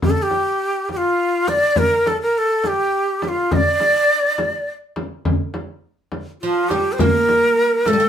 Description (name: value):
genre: Arabic maqam ensemble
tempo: 69 BPM (dotted quarters)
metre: 6/8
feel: straight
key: D minor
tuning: A4 = 440 Hz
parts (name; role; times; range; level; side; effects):
- breathy bright ney; melody; 0.0-8.1 s; F4 to Eb5; -16 LUFS; equal; none
- frame drum; percussion; 0.0-8.0 s; none; -22 LUFS; left 1 dB; none
- oud; second line; 6.4-8.1 s; F3 to Bb3; -22 LUFS; right 2 dB; none
room: wet studio reverb, RT60 0.6 s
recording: band playing live in one room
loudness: -16 LUFS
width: side -9 dB against mid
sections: 0.0-5.3 A section; 5.3-8.1 B section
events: none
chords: none